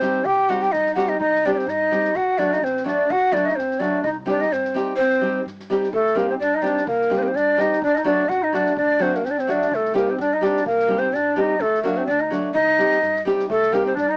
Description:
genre	balkan folk, Balkan wedding band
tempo	127 BPM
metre	2/4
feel	swing 54% on 16ths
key	C dorian sharp4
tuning	A4 = 440 Hz
part	breathy ney	melody	0.0-14.2 s	A4 to G5	-22 LUFS	equal	none
part	warm clarinet	second line	0.0-14.2 s	A3 to G4	-27 LUFS	equal	cassette tape
part	nylon-string guitar	accompaniment	0.0-13.9 s	F#3 to G4	-26 LUFS	equal	cassette tape
part	upright bass	bass	0.0-14.2 s	A1 to G2	-44 LUFS	equal	none
part	soft-mallet drum kit	percussion	0.0-14.0 s	kick drum, snare drum	-45 LUFS	equal	cassette tape
room	light reverb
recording	home recording on cassette, small speaker sound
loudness	-20 LUFS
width	mono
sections	0.0-5.9 A section; 5.9-13.5 B section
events	none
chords	0.0 Cm; 2.1 D; 4.0 Cm; 7.8 D; 9.7 Cm; 11.6 D; 12.6 Cm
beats	| 0.25 0.73 | 1.20 1.67 | 2.15 2.62 | 3.09 3.56 | 4.04 4.51 | 4.98 5.45 | 5.93 6.40 | 6.87 7.34 | 7.81 8.29 | 8.76 9.23 | 9.71 10.18 | 10.65 11.13 | 11.60 12.08 | 12.55 13.03 | 13.50 13.98

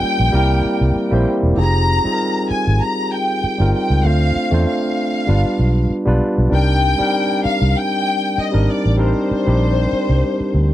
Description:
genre	lush 1970s-style soul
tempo	97 BPM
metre	4/4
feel	swing 54% on 16ths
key	C minor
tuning	A4 = 441 Hz
part	warm symphonic violin section	melody	0.0-10.7 s	C5 to Bb5	-21 LUFS	left 2 dB	none
part	barky tine electric piano	accompaniment	0.0-10.7 s	G3 to C5	-19 LUFS	equal	overdrive
part	vintage muted fingered electric bass	bass	0.0-10.7 s	E1 to E2	-16 LUFS	equal	none
room	little or no reverb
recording	dry, close 1970s-style studio recording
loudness	-14 LUFS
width	side -13 dB against mid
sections	0.0-10.7 A section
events	none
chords	0.3 C7; 1.6 Fm9; 4.0 Dm7; 5.3 G7; 6.5 Cm9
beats	0.34 0.95 | 1.57 2.19 2.81 3.43 | 4.05 4.67 5.28 5.90 | 6.52 7.14 7.76 8.38 | 8.99 9.61 10.23

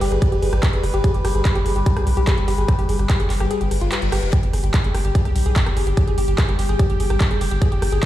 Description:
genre	psychedelic trance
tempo	146 BPM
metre	4/4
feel	straight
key	unclear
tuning	A4 = 440 Hz
part	evolving wavetable pad	sustained chords	0.0-8.1 s	G3 to B4	-27 LUFS	left 2 dB	phaser, built-in reverb, sidechain pumping
part	woody wave-folded pluck	riff	0.0-8.1 s	F4 to Ab4	-26 LUFS	moving between left 4 dB and right 2 dB	chorus, auto-pan, cassette tape, sidechain pumping, digital delay
part	round analog bass	bass	0.0-8.0 s	F1 to B1	-20 LUFS	equal	none
part	big-room dance drum kit	drums	0.0-8.1 s	handclaps, hi-hat, rim click	-28 LUFS	equal	overdrive, studio reverb
part	electronic kick drum	drums	0.2-8.1 s	none	-18 LUFS	equal	overdrive, studio reverb
part	reverse cymbal	sound effects	3.7-4.3 s	none	-34 LUFS	left 7 dB	none
room	little or no reverb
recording	played on a big sound system in a bare room, large studio reverb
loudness	-17 LUFS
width	side -14 dB against mid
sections	0.0-8.1 A section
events	kick drops out 3.5-4.3; reverse cymbal 3.7-4.3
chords	0.0 Fmadd9 (rootless)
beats	0.22 0.63 | 1.04 1.45 1.86 2.27 | 2.69 3.10 3.51 3.92 | 4.33 4.74 5.15 5.56 | 5.97 6.38 6.79 7.21 | 7.62 8.03

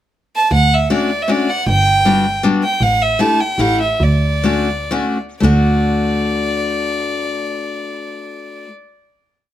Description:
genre	musette waltz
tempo	112-158 BPM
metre	3/4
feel	straight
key	D major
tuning	A4 = 435 Hz
part	clear violin	melody	0.4-8.7 s	D5 to A5	-18 LUFS	right 1 dB	plate reverb
part	rich double bass	bass	0.5-8.7 s	G1 to D2	-17 LUFS	right 1 dB	none
part	picked steel-string acoustic guitar	accompaniment	0.9-8.7 s	G3 to G4	-18 LUFS	left 3 dB	none
room	moderate studio reverb, RT60 0.8 s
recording	none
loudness	-14 LUFS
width	side -12 dB against mid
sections	0.0-0.5 pickup bar; 0.5-5.4 A section; 5.4-8.6 final chord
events	slowing down 2.8-5.4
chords	0.0 N.C.; 0.5 Dmaj7; 1.7 Gmaj7; 2.8 A7sus4; 3.6 A7; 4.0 Dmaj7; 5.4 D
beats	0.13 | 0.52 0.91 1.29 | 1.67 2.05 2.43 | 2.81 3.20 3.59 | 4.01 4.45 4.92 | 5.43 5.96 6.49 | 7.01 7.54 8.07

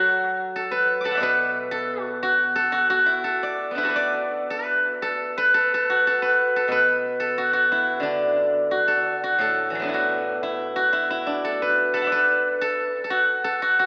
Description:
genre	chinese traditional, Chinese solo plucked strings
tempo	84-93 BPM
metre	2/4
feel	rubato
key	D gong mode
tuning	A4 = 441 Hz
part	steel-string zither	solo	0.0-13.9 s	A2 to D6	-22 LUFS	equal	analog delay
room	wet lush hall reverb, RT60 2.0 s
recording	dreamy mix soaked in reverb, AM radio sound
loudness	-22 LUFS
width	mono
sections	0.0-9.4 A section; 9.4-13.9 B section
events	none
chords	none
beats	0.56 | 1.21 1.87 | 2.54 3.23 | 3.94 4.64 | 5.34 6.03 | 6.70 7.36 | 8.02 8.70 | 9.40 10.09 | 10.76 11.41 | 12.08 12.74 | 13.42

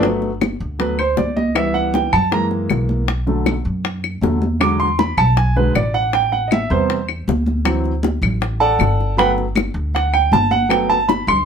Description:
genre	Afro-Cuban jazz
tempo	157 BPM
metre	4/4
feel	straight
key	G major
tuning	A4 = 440 Hz
part	warm baby grand piano	accompaniment	0.0-11.4 s	C3 to D6	-17 LUFS	right 2 dB	none
part	upright bass	bass	0.0-11.4 s	G1 to F#2	-21 LUFS	equal	none
part	bongos	percussion	0.0-11.3 s	none	-23 LUFS	left 6 dB	none
part	congas	percussion	0.0-11.4 s	none	-24 LUFS	equal	none
part	claves	percussion	0.4-11.4 s	none	-24 LUFS	left 8 dB	none
room	moderate studio ambience, RT60 0.5 s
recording	band playing live in one room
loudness	-15 LUFS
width	side -7 dB against mid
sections	0.0-11.4 A section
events	grand piano solo 0.0-11.4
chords	0.0 Gmaj9; 1.6 C#m7b5; 2.3 F#7; 3.1 Bm7; 4.6 E7; 6.1 Am9; 7.7 D7; 9.2 Gmaj9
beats	| 0.04 0.42 0.80 1.18 | 1.56 1.94 2.32 2.70 | 3.08 3.46 3.85 4.23 | 4.61 4.99 5.37 5.75 | 6.13 6.51 6.89 7.28 | 7.66 8.04 8.42 8.80 | 9.18 9.56 9.94 10.32 | 10.70 11.09

